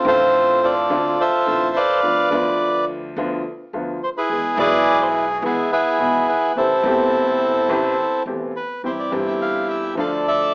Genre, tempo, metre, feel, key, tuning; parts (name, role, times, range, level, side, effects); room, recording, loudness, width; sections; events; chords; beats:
tango; 106 BPM; 4/4; rubato; A minor; A4 = 439 Hz
bandoneon; melody; 0.0-10.5 s; B3 to F5; -17 LUFS; equal
clear grand piano; accompaniment; 0.0-10.5 s; E1 to A4; -24 LUFS; left 1 dB
upright bass; bass; 0.0-10.5 s; E1 to E2; -38 LUFS; equal
moderate large studio reverb, RT60 0.8 s; AM radio sound; -17 LUFS; side -29 dB against mid
0.0-8.8 A section; 8.8-10.5 B section
0.0 Dm7; 2.0 Bdim/D; 4.3 E; 6.6 Am7; 8.8 C; 10.0 Dm
0.33 0.90 1.47 | 2.04 2.60 3.17 3.74 | 4.30 4.86 5.43 5.99 | 6.56 7.12 7.69 8.26 | 8.83 9.40 9.97